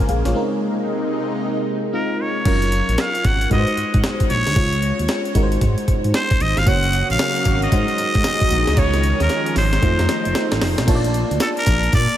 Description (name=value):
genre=R&B, new jack swing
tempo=114 BPM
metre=4/4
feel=swing 63% on 16ths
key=unclear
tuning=A4 = 441 Hz
part: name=FM electric piano with soft pad layer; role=accompaniment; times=0.0-12.2 s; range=Gb3 to A5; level=-23 LUFS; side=equal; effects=chorus
part: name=lush unison pad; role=sustained chords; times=0.0-2.4, 7.0-10.9 s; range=C3 to Gb4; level=-26 LUFS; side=equal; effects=chorus, phaser
part: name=smooth gliding synth bass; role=bass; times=0.1-12.1 s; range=F1 to Bb2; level=-20 LUFS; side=equal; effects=none
part: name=breakbeat sampler-style drum kit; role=drums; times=0.1-12.2 s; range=crash cymbal, hi-hat, kick drum, snare drum, tambourine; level=-21 LUFS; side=equal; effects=none
part: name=trumpet with straight mute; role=melody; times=1.9-12.2 s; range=A4 to Gb5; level=-22 LUFS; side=equal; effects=diffuse ambient delay
room=moderate huge ambient reverb, RT60 5.2 s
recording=dreamy mix soaked in reverb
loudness=-16 LUFS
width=side -12 dB against mid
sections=0.0-2.5 A section; 2.5-10.9 B section; 10.9-12.2 C section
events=break 0.4-2.5; drum fill 8.8-10.9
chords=0.4 Abadd9; 2.5 Gbmaj7; 3.5 Ab7; 4.6 Db; 5.4 Ab7; 6.7 Gbmaj7; 7.7 Ab7; 8.8 Db; 9.6 Ab7; 9.8 F7; 10.9 Bbmaj7